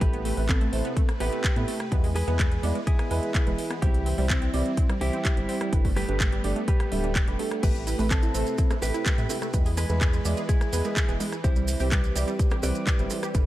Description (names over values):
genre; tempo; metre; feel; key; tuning
progressive house; 126 BPM; 4/4; straight; A minor; A4 = 439 Hz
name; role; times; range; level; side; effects
clean electric guitar; melody; 0.0-13.5 s; C4 to D5; -33 LUFS; equal; digital delay
supersaw pad; sustained chords; 0.0-13.5 s; C3 to B4; -37 LUFS; equal; sidechain pumping
dark baby grand piano; stabs; 0.0-13.5 s; G3 to E5; -34 LUFS; right 5 dB; sidechain pumping
round analog bass; bass; 0.0-13.5 s; D1 to A2; -28 LUFS; equal; sidechain pumping
electronic kick drum; drums; 0.0-13.4 s; none; -24 LUFS; equal; none
house drum kit; drums; 0.0-13.4 s; crash cymbal, handclaps, hi-hat, rim click; -33 LUFS; equal; none
wide unison pluck; arpeggios; 0.1-13.4 s; G3 to G#4; -35 LUFS; right 1 dB; sidechain pumping, digital delay
maracas; percussion; 7.6-13.4 s; none; -38 LUFS; right 6 dB; none
bongos, congas and cowbell; percussion; 8.7-13.2 s; none; -40 LUFS; right 2 dB; none
room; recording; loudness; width
little or no reverb; dark, warm production; -23 LUFS; side -15 dB against mid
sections
0.0-13.5 A section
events
none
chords
0.0 Amadd9; 1.9 E; 3.8 C; 5.7 Gadd9; 7.6 Amadd9; 9.5 E; 11.4 C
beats
| 0.01 0.49 0.96 1.44 | 1.92 2.39 2.87 3.35 | 3.82 4.30 4.78 5.25 | 5.73 6.20 6.68 7.16 | 7.63 8.11 8.58 9.06 | 9.54 10.01 10.49 10.96 | 11.44 11.92 12.39 12.87 | 13.35